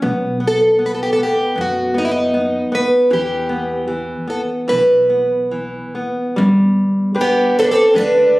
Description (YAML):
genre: fado-style ballad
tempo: 77 BPM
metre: 4/4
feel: rubato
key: E minor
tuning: A4 = 440 Hz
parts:
  - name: nylon-string guitar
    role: accompaniment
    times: 0.0-8.4 s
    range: D3 to B4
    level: -19 LUFS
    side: equal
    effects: none
  - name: upright bass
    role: bass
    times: 0.0-8.2 s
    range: G1 to F#2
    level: -27 LUFS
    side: equal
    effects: none
  - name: picked plugged-in twelve-string acoustic guitar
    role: melody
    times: 0.5-8.4 s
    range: D#4 to B4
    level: -15 LUFS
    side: equal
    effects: none
  - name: picked twelve-string acoustic guitar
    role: second line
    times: 7.2-8.4 s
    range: B3 to D4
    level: -18 LUFS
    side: right 2 dB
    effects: none
room: light reverb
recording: recorded on a phone in the room, club reverb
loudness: -14 LUFS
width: side -19 dB against mid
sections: 0.0-6.4 A section; 6.4-8.4 B section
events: none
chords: 0.0 B5; 3.1 Em; 6.4 G